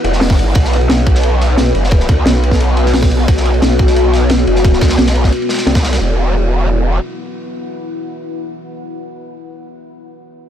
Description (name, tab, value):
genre	dark technical drum and bass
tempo	176 BPM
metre	4/4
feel	straight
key	unclear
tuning	A4 = 438 Hz
part	deep dark ambient pad	sustained chords	0.0-9.5 s	B3 to F#5	-19 LUFS	left 2 dB	chorus, built-in reverb, sidechain pumping
part	growl bass	bass	0.0-7.0 s	E1 to D2	-13 LUFS	equal	chorus, overdrive
part	crunchy breakbeat drum kit	drums	0.0-6.0 s	hi-hat, ride cymbal, snare drum	-23 LUFS	equal	high-pass filter on cymbals, high-pass filter on hats, high-pass filter on snare, high-pass filter on room
part	drum and bass drum kit	drums	0.0-6.0 s	hi-hat, snare drum	-19 LUFS	equal	low-pass filter on hats, low-pass filter on snare
part	electronic kick drum	drums	0.3-5.8 s	none	-12 LUFS	equal	overdrive
room	light reverb, small room reverb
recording	none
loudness	-10 LUFS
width	side -10 dB against mid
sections	0.0-6.0 A section; 6.0-8.7 B section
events	filter sweep on drum 0.0-6.0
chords	0.0 Em; 0.6 B5; 6.0 E5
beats	0.21 | 0.55 0.89 1.24 1.58 | 1.92 2.26 2.60 2.94 | 3.28 3.62 3.96 4.30 | 4.64 4.99 5.33 5.67 | 6.01 6.35 6.69 7.03 | 7.37 7.71 8.05 8.39